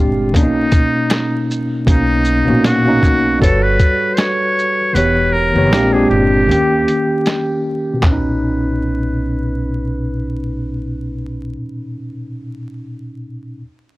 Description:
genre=lo-fi hip hop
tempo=78 BPM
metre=4/4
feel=swing 56% on 16ths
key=B major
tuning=A4 = 439 Hz
part: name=trumpet with metal mute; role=melody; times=0.0-11.6 s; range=D#4 to C#5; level=-20 LUFS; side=equal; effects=low-pass filter
part: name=tine electric piano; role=accompaniment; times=0.0-13.6 s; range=A#2 to C#5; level=-17 LUFS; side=equal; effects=medium stereo tremolo, cassette tape, low-pass filter
part: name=upright bass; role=bass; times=0.0-11.5 s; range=E1 to D#2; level=-20 LUFS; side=equal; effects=none
part: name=lo-fi sampler-style drum kit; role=drums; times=0.3-8.2 s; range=handclaps, hi-hat, kick drum, shaker, snare drum, toms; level=-15 LUFS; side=equal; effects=none
part: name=finger snaps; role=percussion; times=1.1-1.3 s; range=none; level=-28 LUFS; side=left 2 dB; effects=none
room=small room ambience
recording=dry, gritty hardware recording, vinyl crackle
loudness=-13 LUFS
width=side -19 dB against mid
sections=0.0-1.9 A section; 1.9-8.0 B section; 8.0-11.1 C section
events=filter sweep 1.9-8.0; kick muted 4.9-8.0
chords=0.3 Bmaj9; 3.4 Gmaj9#11; 4.9 Em6; 5.7 A#13; 6.5 D#7; 8.0 Bmaj9

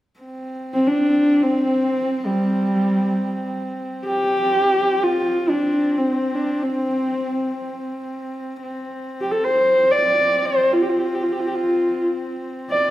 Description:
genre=mongolian traditional, Mongolian folk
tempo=free time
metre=none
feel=none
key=unclear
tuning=A4 = 440 Hz
part: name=clear horsehead fiddle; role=drone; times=0.2-12.9 s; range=C4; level=-29 LUFS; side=equal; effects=none
part: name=dark horsehead fiddle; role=melody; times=0.7-12.9 s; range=G3 to D5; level=-18 LUFS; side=equal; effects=none
room=wet recital hall reverb, RT60 1.5 s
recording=none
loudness=-17 LUFS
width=side -14 dB against mid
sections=0.2-12.9 A section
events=none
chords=none

